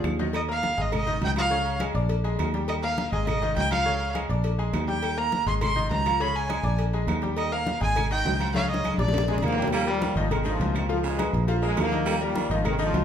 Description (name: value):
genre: latin, salsa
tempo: 205 BPM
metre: 4/4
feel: straight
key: Eb major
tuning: A4 = 440 Hz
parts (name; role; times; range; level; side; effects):
- bright concert grand piano; accompaniment; 0.0-13.0 s; Db3 to D6; -31 LUFS; left 3 dB; none
- fingered electric bass; bass; 0.0-13.0 s; Ab1 to Eb2; -28 LUFS; equal; none
- bongos and cowbell; percussion; 0.0-13.0 s; none; -37 LUFS; left 5 dB; none
- claves; percussion; 0.1-12.8 s; none; -41 LUFS; right 3 dB; none
- congas; percussion; 0.1-13.0 s; none; -34 LUFS; left 1 dB; none
- timbales and agogo bells; percussion; 0.2-13.0 s; none; -34 LUFS; right 8 dB; none
- rich erhu; melody; 0.4-9.4 s; D5 to C6; -27 LUFS; right 1 dB; none
- brilliant trombone section; melody; 9.3-13.0 s; Ab2 to Bb3; -29 LUFS; left 1 dB; none
- raspy baritone saxophone; second line; 9.7-13.0 s; Db3 to G3; -33 LUFS; right 6 dB; none
room: moderate large studio reverb, RT60 1.2 s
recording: band playing live in one room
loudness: -23 LUFS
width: side -8 dB against mid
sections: 0.3-9.7 A section; 9.7-13.0 B section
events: drum fill 0.0-0.3, 8.6-9.7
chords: 0.3 Ebsus2; 0.9 Ab5; 1.5 Db; 2.1 Bb7; 2.7 Ebadd9; 3.3 Ab5; 3.9 Db; 4.4 Bb7; 5.0 Eb; 5.6 Abadd9; 6.2 Db5; 6.8 Bb7; 7.4 Ebadd9; 8.0 Ab5; 8.6 Db5; 9.1 Bb7; 9.7 Ebadd9; 10.3 Abadd9; 10.9 Db7; 11.5 Bb7; 12.1 Ebadd9